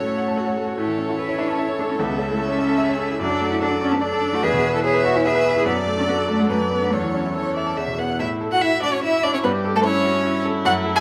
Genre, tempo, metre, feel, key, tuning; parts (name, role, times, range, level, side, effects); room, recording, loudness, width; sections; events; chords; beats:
quick classical-period movement for piano quintet; 147 BPM; 3/4; straight; A major from 3.2 s; A4 = 438 Hz
rich violin; melody; 0.0-11.0 s; A4 to G#5; -27 LUFS; equal
rich violin; second line; 0.0-11.0 s; A3 to D5; -30 LUFS; equal
warm cello; second line; 0.0-11.0 s; E3 to A4; -27 LUFS; equal
bright concert grand piano; accompaniment; 0.0-11.0 s; C#2 to A5; -26 LUFS; equal
warm viola; accompaniment; 0.0-11.0 s; E4 to B4; -30 LUFS; equal
wet recital hall reverb, RT60 1.8 s; close, detailed microphones; -21 LUFS; mono
0.0-8.2 A section; 8.2-11.0 B section
0.0 F#m/A; 0.8 A; 2.0 A/C#; 3.2 D/F#; 4.4 E; 5.7 D/F#; 6.5 Bm7/F#; 6.9 A/E; 7.8 E; 8.2 A; 9.4 A7/G
0.38 | 0.78 1.19 1.59 | 2.00 2.40 2.81 | 3.21 3.62 4.03 | 4.43 4.84 5.25 | 5.66 6.08 6.50 | 6.92 7.35 7.77 | 8.20 8.62 9.03 | 9.44 9.85 10.25 | 10.65